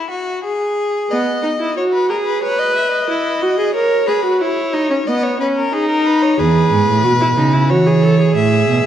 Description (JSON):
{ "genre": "classical, baroque-style fugue for string quartet", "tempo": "91 BPM", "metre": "4/4", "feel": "straight", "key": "unclear", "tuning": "A4 = 438 Hz", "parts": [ { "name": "rich violin", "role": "second line", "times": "0.0-8.9 s", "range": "F#4 to E5", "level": "-19 LUFS", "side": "left 3 dB", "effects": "none" }, { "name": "clear viola", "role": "accompaniment", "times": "1.1-8.9 s", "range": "B3 to B4", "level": "-16 LUFS", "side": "right 1 dB", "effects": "none" }, { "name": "rich cello", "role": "bass", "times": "6.4-8.8 s", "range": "E2 to E3", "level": "-14 LUFS", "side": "right 3 dB", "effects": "none" } ], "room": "wet concert hall reverb, RT60 1.9 s", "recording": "dark, warm production", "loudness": "-13 LUFS", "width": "side -10 dB against mid", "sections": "0.0-8.9 A section", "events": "none", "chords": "0.0 N.C.; 1.1 B; 2.4 C#m7/B (rootless); 3.7 F#7; 5.1 B; 6.4 E; 7.7 F#m7/E" }